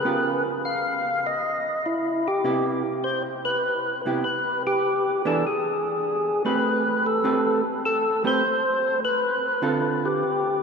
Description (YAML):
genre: jazz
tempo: 100 BPM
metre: 4/4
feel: swing 69% on 8ths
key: C major, A minor from 6.6 s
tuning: A4 = 440 Hz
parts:
  - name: percussive tonewheel organ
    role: melody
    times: 0.0-10.6 s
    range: E4 to F5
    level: -23 LUFS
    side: left 1 dB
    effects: overdrive, slow rotary speaker
  - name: vintage hollow-body jazz guitar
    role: accompaniment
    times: 0.0-10.2 s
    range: C3 to B4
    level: -28 LUFS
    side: right 3 dB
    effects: none
room: wet cathedral reverb, RT60 5.8 s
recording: in a vast, echoing space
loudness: -21 LUFS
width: side -5 dB against mid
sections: 0.0-6.6 A section; 6.6-10.6 B section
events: none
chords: 0.0 Db7#11; 1.8 Cmaj7; 5.4 Am9; 9.0 Dm7